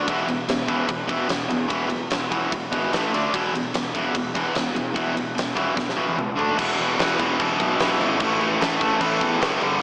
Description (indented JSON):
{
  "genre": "hard rock",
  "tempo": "148 BPM",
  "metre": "4/4",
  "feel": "straight",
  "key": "unclear",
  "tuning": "A4 = 440 Hz",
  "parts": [
    { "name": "overdriven electric guitar", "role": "riff", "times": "0.0-9.8 s", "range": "E2 to D4", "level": "-25 LUFS", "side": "equal", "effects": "slapback echo" },
    { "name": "fuzz picked electric bass", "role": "bass", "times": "0.1-9.8 s", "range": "E1 to E2", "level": "-34 LUFS", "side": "equal", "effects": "overdrive" },
    { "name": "huge arena drum kit", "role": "drums", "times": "0.1-9.7 s", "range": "crash cymbal, kick drum, ride cymbal, snare drum, toms", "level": "-28 LUFS", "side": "equal", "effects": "none" }
  ],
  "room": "moderate lush hall reverb, RT60 2.0 s",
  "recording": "big arena sound, small speaker sound",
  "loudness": "-23 LUFS",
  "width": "mono",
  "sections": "0.0-6.6 A section; 6.6-9.8 B section",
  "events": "drum fill 5.8-6.6",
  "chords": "0.1 E5; 2.9 A5; 3.1 D5; 3.3 E5; 6.4 D5; 6.6 E; 8.2 A5",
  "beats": "| 0.08 0.48 0.89 1.30 | 1.71 2.11 2.52 2.93 | 3.33 3.74 4.15 4.55 | 4.96 5.37 5.77 6.18 | 6.59 6.99 7.40 7.80 | 8.21 8.61 9.02 9.42"
}